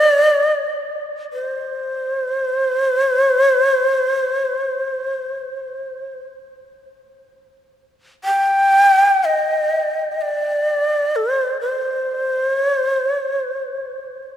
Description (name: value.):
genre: japanese traditional, Japanese chamber music.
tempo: free time.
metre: none.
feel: none.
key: C minor.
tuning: A4 = 440 Hz.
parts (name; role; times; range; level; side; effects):
breathy mellow shakuhachi; solo; 0.0-14.2 s; C5 to G5; -16 LUFS; equal; none.
room: moderate cathedral reverb, RT60 4.7 s.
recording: minimal, uncompressed stereo recording.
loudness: -16 LUFS.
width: side -11 dB against mid.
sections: 0.0-7.3 A section; 7.3-14.4 B section.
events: none.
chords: none.